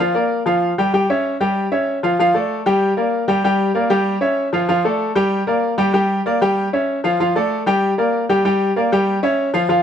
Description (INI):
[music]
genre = latin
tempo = 192 BPM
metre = 4/4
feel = straight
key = unclear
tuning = A4 = 438 Hz
[part]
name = bright upright piano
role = solo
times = 0.0-9.8 s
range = F3 to G5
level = -15 LUFS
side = equal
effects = none
[sound]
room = moderate studio reverb, RT60 1.0 s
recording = none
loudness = -15 LUFS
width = side -8 dB against mid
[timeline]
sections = 0.0-2.2 A section; 2.2-9.8 B section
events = none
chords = 0.0 Bb6; 0.9 C#dim; 2.2 Dm; 2.8 Gm; 4.1 C#dim; 4.7 Dm; 5.3 Gm; 6.6 C#dim; 7.2 Dm; 7.8 Gm; 9.1 C#dim